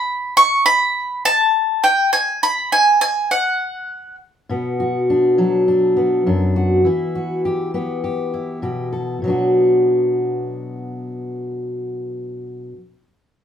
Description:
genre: folk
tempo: 101 BPM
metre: 4/4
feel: straight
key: B minor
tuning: A4 = 440 Hz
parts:
  - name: bowl-back mandolin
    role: melody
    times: 0.0-4.2 s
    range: F#5 to C#6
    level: -14 LUFS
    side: equal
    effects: none
  - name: fingerpicked steel-string acoustic guitar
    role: accompaniment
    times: 4.5-12.8 s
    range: F#2 to A4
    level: -17 LUFS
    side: left 1 dB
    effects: none
room: moderate studio reverb, RT60 0.7 s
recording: band playing live in one room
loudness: -15 LUFS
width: side -8 dB against mid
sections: 0.0-4.5 A section; 4.5-9.2 B section; 9.2-11.6 C section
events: none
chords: 0.0 N.C.; 4.5 Bm; 6.8 Em; 9.2 Bm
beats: 0.37 0.96 1.54 | 2.13 2.72 3.31 3.89 | 4.48 5.07 5.66 6.25 | 6.85 7.44 8.04 8.63 | 9.23 9.82 10.42 11.01

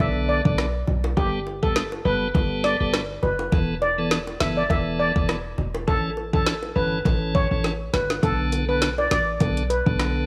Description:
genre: dancehall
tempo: 102 BPM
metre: 4/4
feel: swing 56% on 16ths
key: B minor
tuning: A4 = 439 Hz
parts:
  - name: steel pan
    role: melody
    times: 0.0-9.8 s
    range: G4 to E5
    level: -28 LUFS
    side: equal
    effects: tape echo
  - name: tonewheel organ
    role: accompaniment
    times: 0.0-10.3 s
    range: D3 to A4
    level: -30 LUFS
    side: equal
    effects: overdrive, stopped rotary speaker, sidechain pumping
  - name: short 808-style bass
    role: bass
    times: 0.0-10.2 s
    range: E1 to B1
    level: -30 LUFS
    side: equal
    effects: none
  - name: bongos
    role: percussion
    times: 0.0-10.1 s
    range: none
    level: -36 LUFS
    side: equal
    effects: none
  - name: afro-pop drum kit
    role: drums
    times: 0.5-10.1 s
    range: hi-hat, kick drum, rim click, snare drum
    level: -27 LUFS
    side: equal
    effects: none
room: light reverb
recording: none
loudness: -23 LUFS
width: mono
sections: 0.0-8.2 A section; 8.2-10.3 B section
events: drum fill 7.6-8.2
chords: 0.0 Bm7; 1.2 Gadd9; 3.5 Esus4; 5.9 A; 8.2 Bm7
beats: 0.00 0.58 | 1.17 1.76 2.35 2.94 | 3.52 4.11 4.70 5.29 | 5.88 6.47 7.05 7.64 | 8.23 8.82 9.41 9.99

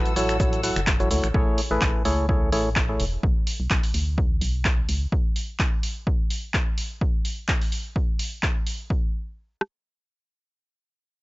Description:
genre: piano house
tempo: 127 BPM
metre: 4/4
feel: swing 55% on 16ths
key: A major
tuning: A4 = 442 Hz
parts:
  - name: muted studio violin section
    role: sustained chords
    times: 0.0-1.3 s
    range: A4 to E6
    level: -34 LUFS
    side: left 3 dB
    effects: sidechain pumping
  - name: percussive organ stab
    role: riff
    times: 0.0-3.0 s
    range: F#3 to F#5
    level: -25 LUFS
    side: equal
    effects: chorus, sidechain pumping, analog delay
  - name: organ-like FM bass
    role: bass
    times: 0.0-5.1 s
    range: E1 to D2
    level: -27 LUFS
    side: equal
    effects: sidechain pumping
  - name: punchy analog drum machine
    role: drums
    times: 0.1-8.8 s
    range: finger snaps, handclaps, hi-hat, shaker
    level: -28 LUFS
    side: equal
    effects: none
  - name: punchy analog drum machine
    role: drums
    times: 0.4-9.7 s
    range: kick drum, rim click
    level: -24 LUFS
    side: equal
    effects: none
room: little or no reverb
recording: dry, gritty hardware recording, transformer saturation, nothing above 7.8 kHz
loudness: -22 LUFS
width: side -21 dB against mid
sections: 0.0-1.3 A section; 1.3-8.9 B section; 8.9-11.2 C section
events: filter sweep on synth stab 1.3-3.2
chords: 0.0 F#m7; 1.3 Amaj7; 3.2 Bm; 4.9 N.C.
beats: 0.40 0.87 | 1.34 1.82 2.29 2.76 | 3.23 3.71 4.18 4.65 | 5.12 5.59 6.07 6.54 | 7.01 7.49 7.96 8.43 | 8.90 9.38

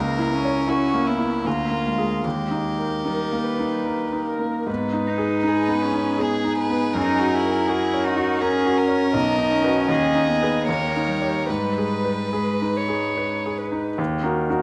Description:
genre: classical, slow romantic movement for piano quartet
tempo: 70-84 BPM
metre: 3/4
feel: rubato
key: G# minor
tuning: A4 = 440 Hz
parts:
  - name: rich violin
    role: second line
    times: 0.0-13.6 s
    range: E4 to B4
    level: -30 LUFS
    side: equal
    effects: none
  - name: warm cello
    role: second line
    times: 0.0-13.2 s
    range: G3 to E4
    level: -28 LUFS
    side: equal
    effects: none
  - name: bright grand piano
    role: accompaniment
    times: 0.0-14.6 s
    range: B1 to C#5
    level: -26 LUFS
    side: equal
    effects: none
  - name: dark violin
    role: melody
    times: 0.7-14.0 s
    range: G#4 to D#5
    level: -29 LUFS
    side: equal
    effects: none
room: wet recital hall reverb, RT60 1.5 s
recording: nothing above 10.6 kHz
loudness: -22 LUFS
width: mono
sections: 0.0-14.0 A section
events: none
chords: 0.0 A#dim/C#; 1.5 A#7/D; 2.2 D#; 4.7 G#m; 7.0 F#; 9.1 B; 9.9 G#m/D#; 10.7 D#7; 11.5 G#m; 14.0 Ebm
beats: 0.70 1.46 | 2.25 3.06 3.87 | 4.68 5.46 6.21 | 6.96 7.69 8.41 | 9.14 9.89 10.67 | 11.48 12.33 13.18 | 13.99

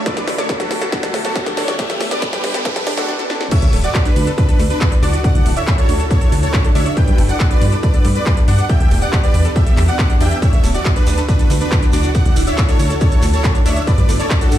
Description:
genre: uplifting trance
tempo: 139 BPM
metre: 4/4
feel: straight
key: D major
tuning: A4 = 444 Hz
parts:
  - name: shimmering ambient pad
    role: sustained chords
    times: 0.0-14.6 s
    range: G2 to D5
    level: -26 LUFS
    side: equal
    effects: chorus, built-in reverb, phaser, vintage 12-bit sampler grit, sidechain pumping
  - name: analog pluck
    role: arpeggios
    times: 0.0-14.5 s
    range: A3 to D5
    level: -28 LUFS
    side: left 3 dB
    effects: chorus, sidechain pumping, dub echo
  - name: riser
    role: sound effects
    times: 0.0-3.1 s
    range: none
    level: -27 LUFS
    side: right 1 dB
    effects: none
  - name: dense compressed supersaw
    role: melody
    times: 0.1-14.6 s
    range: D4 to G5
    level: -22 LUFS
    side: right 1 dB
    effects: sidechain pumping, dub echo
  - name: electronic kick drum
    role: drums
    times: 0.1-14.4 s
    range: none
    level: -15 LUFS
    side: equal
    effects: none
  - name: techno drum kit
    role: drums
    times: 0.1-14.6 s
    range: crash cymbal, handclaps, hi-hat, ride cymbal, snare drum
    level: -24 LUFS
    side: equal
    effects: none
  - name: plucky unison lead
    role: second line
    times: 3.5-14.6 s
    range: A4 to G5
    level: -29 LUFS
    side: equal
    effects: sidechain pumping, dub echo
  - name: plucky analog bass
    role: bass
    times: 3.6-14.6 s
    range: D1 to G2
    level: -16 LUFS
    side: equal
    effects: sidechain pumping
  - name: shekere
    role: percussion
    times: 10.4-14.6 s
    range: none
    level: -32 LUFS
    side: right 4 dB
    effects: none
room: little or no reverb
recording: played on a big sound system in a bare room, large studio reverb, high-pass filter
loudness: -13 LUFS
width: side -12 dB against mid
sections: 0.0-3.5 A section; 3.5-14.6 B section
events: build-up 0.0-3.5; drum fill 0.0-3.1, 3.2-3.5; riser 0.0-3.1; drop 3.5-14.6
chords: 0.1 G; 1.8 Em7; 3.5 Dadd9; 7.0 G; 8.7 Em7; 10.4 Dadd9; 13.9 G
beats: | 0.06 0.49 0.93 1.36 | 1.79 2.22 2.65 3.08 | 3.52 3.95 4.38 4.81 | 5.24 5.67 6.11 6.54 | 6.97 7.40 7.83 8.26 | 8.70 9.13 9.56 9.99 | 10.42 10.85 11.29 11.72 | 12.15 12.58 13.01 13.44 | 13.88 14.31

